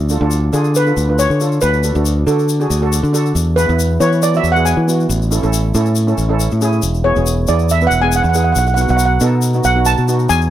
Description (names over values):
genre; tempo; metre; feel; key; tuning
calypso; 138 BPM; 4/4; straight; unclear; A4 = 440 Hz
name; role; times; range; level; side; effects
modern bright fingered electric bass; bass; 0.0-10.5 s; E1 to E3; -15 LUFS; equal; none
steel pan; accompaniment; 0.1-10.3 s; B3 to B4; -20 LUFS; right 3 dB; none
egg shaker; percussion; 0.1-10.5 s; none; -26 LUFS; left 10 dB; none
steel pan; melody; 0.8-10.5 s; A4 to A5; -17 LUFS; right 1 dB; none
room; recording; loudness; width
light reverb; dry, close 1970s-style studio recording; -12 LUFS; side -12 dB against mid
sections
0.0-10.5 A section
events
steel pan solo 0.0-10.5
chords
0.0 Dm; 1.6 D; 3.4 E; 5.1 Amaj7; 6.8 E; 8.6 B7